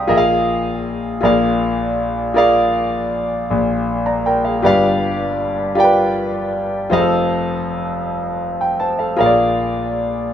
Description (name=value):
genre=gospel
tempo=53 BPM (dotted quarters)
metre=6/8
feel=straight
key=unclear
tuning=A4 = 439 Hz
part: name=warm grand piano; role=solo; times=0.0-10.3 s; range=F1 to Eb6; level=-15 LUFS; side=equal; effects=none
room=moderate studio reverb, RT60 0.7 s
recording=band playing live in one room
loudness=-15 LUFS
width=side -9 dB against mid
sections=0.0-10.3 A section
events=none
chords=0.1 Bb7sus4; 1.2 Bb7; 4.6 G7; 6.9 F7; 9.2 Bb7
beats=| 0.09 1.23 | 2.37 3.50 | 4.64 5.78 | 6.91 8.04 | 9.18 10.31